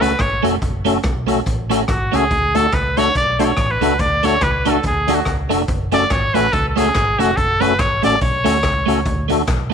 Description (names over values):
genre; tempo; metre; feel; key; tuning
ska; 142 BPM; 4/4; swing 57% on 8ths; F# minor; A4 = 441 Hz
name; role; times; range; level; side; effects
bright trumpet; melody; 0.0-9.3 s; F#4 to D5; -18 LUFS; equal; none
clean electric guitar; accompaniment; 0.0-9.7 s; A3 to F#4; -22 LUFS; right 14 dB; analog chorus
tonewheel organ; stabs; 0.0-9.4 s; A3 to A4; -22 LUFS; left 12 dB; overdrive, chorus vibrato
vintage muted fingered electric bass; bass; 0.0-9.7 s; E#1 to D2; -24 LUFS; equal; none
raw garage drum kit; drums; 0.0-9.6 s; hi-hat, kick drum, rim click; -22 LUFS; equal; none
group handclap; percussion; 6.1-9.6 s; none; -33 LUFS; left 12 dB; slapback echo
room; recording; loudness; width
light reverb, small room ambience; 1960s-style stereo with parts hard left and right; -15 LUFS; side -7 dB against mid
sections
0.0-9.7 A section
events
trumpet solo 0.0-9.7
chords
0.0 F#m; 2.3 D; 5.7 F#m; 9.1 D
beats
0.19 | 0.62 1.04 1.46 1.89 | 2.31 2.73 3.15 3.58 | 4.00 4.42 4.84 5.26 | 5.69 6.11 6.53 6.95 | 7.38 7.80 8.22 8.64 | 9.06 9.48